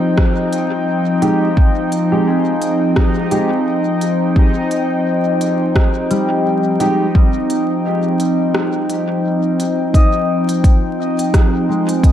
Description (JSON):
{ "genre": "ambient dub", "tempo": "86 BPM", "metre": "4/4", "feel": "swing 56% on 16ths", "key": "F minor", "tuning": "A4 = 439 Hz", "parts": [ { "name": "warbly tape-like pad", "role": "sustained chords", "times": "0.0-12.1 s", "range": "F3 to G5", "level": "-16 LUFS", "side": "equal", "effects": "chorus, built-in reverb" }, { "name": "concert harp", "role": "arpeggios", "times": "0.0-12.1 s", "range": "G3 to Eb5", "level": "-25 LUFS", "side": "left 2 dB", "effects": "dub echo" }, { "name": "bubbling stepped-filter texture", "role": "texture", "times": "0.0-10.0 s", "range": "Eb4 to Eb5", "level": "-26 LUFS", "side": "left 3 dB", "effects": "chorus, built-in reverb" }, { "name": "electronic kick drum", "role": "drums", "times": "0.2-12.1 s", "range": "none", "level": "-12 LUFS", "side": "equal", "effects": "none" }, { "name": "organic electronic drum kit", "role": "drums", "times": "0.2-12.1 s", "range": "hi-hat, rim click", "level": "-25 LUFS", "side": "equal", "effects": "dub echo" }, { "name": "dark upright piano", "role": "stabs", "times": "1.2-7.0 s", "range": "Ab3 to G4", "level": "-23 LUFS", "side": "right 2 dB", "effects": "wide subtle chorus, dub echo" } ], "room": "moderate plate reverb, RT60 2.2 s", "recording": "dreamy mix soaked in reverb, vinyl crackle", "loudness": "-13 LUFS", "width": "side -10 dB against mid", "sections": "0.0-9.9 A section; 9.9-12.1 B section", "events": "break 8.5-9.9", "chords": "0.0 Fm9", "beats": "0.18 0.87 | 1.57 2.27 2.97 3.66 | 4.36 5.06 5.76 6.46 | 7.15 7.85 8.55 9.25 | 9.94 10.64 11.34 12.04" }